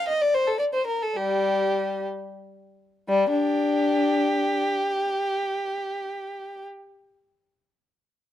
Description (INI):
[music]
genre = classical, baroque-style suite movement for unaccompanied violin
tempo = 56-78 BPM (dotted quarters)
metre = 6/8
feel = rubato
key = unclear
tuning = A4 = 439 Hz
[part]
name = rich violin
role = solo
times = 0.0-6.7 s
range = G3 to Eb5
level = -22 LUFS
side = left 1 dB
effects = none
[sound]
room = light reverb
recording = dark, warm production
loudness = -22 LUFS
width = side -12 dB against mid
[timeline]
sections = 0.0-3.1 A section; 3.1-7.2 B section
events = slowing down 0.0-3.1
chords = none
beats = 0.32 | 1.16 2.07 | 3.09 4.13 | 5.15 6.17